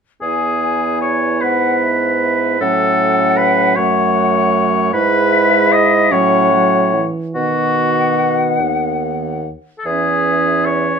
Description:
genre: classical, slow romantic movement for wind quintet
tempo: 47-52 BPM (dotted quarters)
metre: 6/8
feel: rubato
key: E major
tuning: A4 = 440 Hz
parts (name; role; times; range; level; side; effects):
- concert flute; melody; 0.2-11.0 s; E5 to G#5; -20 LUFS; left 8 dB; none
- clear oboe; second line; 0.2-11.0 s; F#4 to D#5; -16 LUFS; left 2 dB; none
- dark French horn; accompaniment; 0.2-11.0 s; D#3 to B3; -24 LUFS; right 2 dB; none
- warm clarinet; accompaniment; 0.2-11.0 s; A3 to E4; -21 LUFS; right 14 dB; none
- warm bassoon; bass; 0.2-11.0 s; D#2 to B2; -19 LUFS; right 2 dB; none
room: light reverb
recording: minimal, uncompressed stereo recording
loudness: -13 LUFS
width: side -6 dB against mid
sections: 0.2-11.0 A section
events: none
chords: 0.2 E; 2.6 F#m/A; 4.9 E/G#; 6.1 F#m/A; 7.4 B; 9.9 E

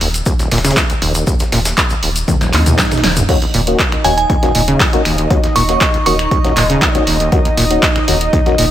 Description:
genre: acid house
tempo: 119 BPM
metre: 4/4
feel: straight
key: Eb minor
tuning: A4 = 438 Hz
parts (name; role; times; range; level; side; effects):
- acid bass, saw; riff; 0.0-8.7 s; Eb1 to Eb3; -19 LUFS; equal; overdrive, lush chorus, sidechain pumping
- round analog bass; bass; 0.0-8.7 s; Eb1 to Eb2; -19 LUFS; equal; tube saturation, sidechain pumping
- dusty soul sampler-style drum kit; drums; 0.0-8.7 s; hi-hat, snare drum; -26 LUFS; equal; none
- punchy analog drum machine; drums; 0.0-8.7 s; crash cymbal, finger snaps, handclaps, hi-hat, snare drum, toms; -17 LUFS; equal; none
- tube shaker; percussion; 0.1-3.3 s; none; -24 LUFS; left 2 dB; none
- electronic kick drum; drums; 0.3-8.4 s; none; -16 LUFS; equal; none
- swell; sound effects; 2.5-3.3 s; none; -23 LUFS; right 4 dB; none
- lush unison pad; sustained chords; 3.6-8.7 s; Eb4 to Eb5; -19 LUFS; equal; chorus, sidechain pumping
- percussive organ stab; stabs; 3.3-8.5 s; Bb3 to Gb4; -20 LUFS; left 3 dB; ensemble chorus, dub echo
- glassy synth bell; melody; 4.0-6.8 s; Ab5 to Db6; -18 LUFS; right 2 dB; chorus, dub echo
room: light reverb, digital ambience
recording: none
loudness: -11 LUFS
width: side -12 dB against mid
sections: 0.0-3.3 A section; 3.3-8.7 B section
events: drum fill 2.3-3.3; swell 2.5-3.3; drop 3.3-8.7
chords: 0.0 N.C.; 3.3 Ebm7

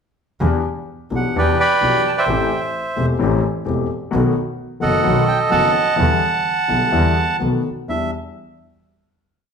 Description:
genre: tango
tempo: 128 BPM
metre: 4/4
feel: rubato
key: E minor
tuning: A4 = 439 Hz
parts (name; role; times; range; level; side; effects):
- warm grand piano; accompaniment; 0.4-8.1 s; E1 to G4; -21 LUFS; left 5 dB; none
- clear double bass; bass; 0.4-8.1 s; E1 to E2; -22 LUFS; right 2 dB; none
- bandoneon; melody; 1.2-8.1 s; A4 to B5; -17 LUFS; right 3 dB; none
room: moderate large studio reverb, RT60 1.1 s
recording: band playing live in one room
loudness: -16 LUFS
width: side -6 dB against mid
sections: 0.4-7.9 A section; 7.9-9.5 final chord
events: none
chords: 0.4 Em7; 2.3 Am7; 4.1 B7; 6.0 Em7; 7.4 B7; 7.9 Em7

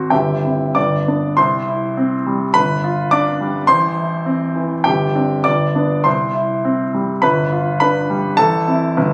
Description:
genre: classical, virtuoso piano study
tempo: 93-107 BPM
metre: 2/4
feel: rubato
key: C major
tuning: A4 = 440 Hz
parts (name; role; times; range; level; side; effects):
- clear baby grand piano; solo; 0.0-9.1 s; G1 to D6; -17 LUFS; equal; none
room: moderate large studio reverb, RT60 1.3 s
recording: recorded on a phone in the room, club reverb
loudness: -17 LUFS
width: mono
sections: 0.0-1.4 A section; 1.4-9.1 B section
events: none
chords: 0.1 C/G; 0.7 G; 1.4 C; 2.5 G7; 3.7 Am; 4.9 Gsus4; 5.5 G; 6.1 C; 7.2 G7; 8.4 Am

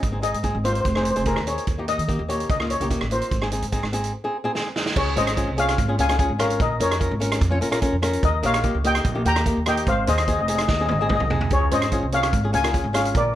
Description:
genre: calypso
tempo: 146 BPM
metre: 4/4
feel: straight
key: Db major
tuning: A4 = 440 Hz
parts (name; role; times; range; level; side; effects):
- steel pan; melody; 0.0-13.4 s; Ab4 to Bb5; -24 LUFS; left 2 dB; plate reverb
- upright bass; bass; 0.0-13.3 s; F1 to Eb3; -25 LUFS; equal; none
- vintage drum kit; drums; 0.0-13.2 s; crash cymbal, hi-hat, kick drum, rim click, snare drum, toms; -26 LUFS; right 2 dB; none
- flamenco guitar; accompaniment; 0.1-13.1 s; Bb3 to Db5; -26 LUFS; left 1 dB; none
room: light reverb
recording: none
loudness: -19 LUFS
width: side -12 dB against mid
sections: 0.0-5.0 A section; 5.0-13.4 B section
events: drum fill 4.5-5.0, 10.7-11.5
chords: 0.0 Ab; 1.7 Eb7; 3.3 Ab; 5.0 Dbadd9; 6.6 Bbm7; 8.2 Eb7; 9.9 Ab; 11.5 Db

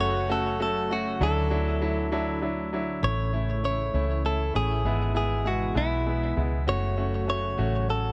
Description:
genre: six-eight pop ballad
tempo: 66 BPM (dotted quarters)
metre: 6/8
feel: straight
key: A major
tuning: A4 = 440 Hz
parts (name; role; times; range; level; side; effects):
- direct-recorded clean electric guitar; melody; 0.0-8.1 s; E4 to C#5; -32 LUFS; equal; digital delay
- clear concert grand piano; accompaniment; 0.0-8.1 s; F#3 to F#4; -33 LUFS; equal; none
- lush unison pad; sustained chords; 0.0-8.1 s; B2 to F#4; -38 LUFS; equal; chorus
- vintage muted fingered electric bass; bass; 0.0-8.1 s; F#1 to D2; -30 LUFS; equal; none
room: light reverb, small room ambience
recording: none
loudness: -27 LUFS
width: mono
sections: 0.0-3.0 A section; 3.0-8.1 B section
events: none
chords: 0.0 F#m; 1.2 Dadd9; 3.0 A; 4.8 E/G#; 6.7 F#m

